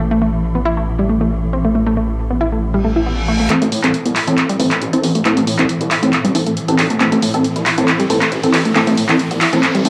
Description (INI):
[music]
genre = driving peak-time techno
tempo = 137 BPM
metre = 4/4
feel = straight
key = A minor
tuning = A4 = 445 Hz
[part]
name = unison pluck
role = riff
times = 0.0-9.9 s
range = G3 to E4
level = -21 LUFS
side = equal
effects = tube saturation, tape echo
[part]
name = gritty driven synth bass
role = bass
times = 0.0-9.8 s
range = E1 to A2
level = -24 LUFS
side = equal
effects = high-pass filter
[part]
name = swarming drone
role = drone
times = 0.0-9.9 s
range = A2 to E3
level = -27 LUFS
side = equal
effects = built-in reverb
[part]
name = reverse cymbal and riser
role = sound effects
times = 2.8-9.9 s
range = none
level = -32 LUFS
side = equal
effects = none
[part]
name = rave stab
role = stabs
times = 3.5-9.9 s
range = E3 to A4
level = -19 LUFS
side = equal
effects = chorus, built-in reverb, tape echo
[part]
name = techno drum kit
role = drums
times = 3.5-9.9 s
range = handclaps, hi-hat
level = -20 LUFS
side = equal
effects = high-pass filter on hats, high-pass filter on perc, high-pass filter on cymbals, high-pass filter on snare, high-pass filter on room
[sound]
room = wet spring reverb, RT60 1.2 s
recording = home recording on cassette, high-pass filter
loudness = -16 LUFS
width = mono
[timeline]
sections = 0.0-3.5 A section; 3.5-9.9 B section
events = reverse cymbal 2.8-3.5; build-up 3.5-9.9; drum fill 3.5-9.9; filter sweep on synth arpeggio sound 3.5-9.9; filter sweep on synth stab 3.5-9.9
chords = 0.0 A5; 3.5 Am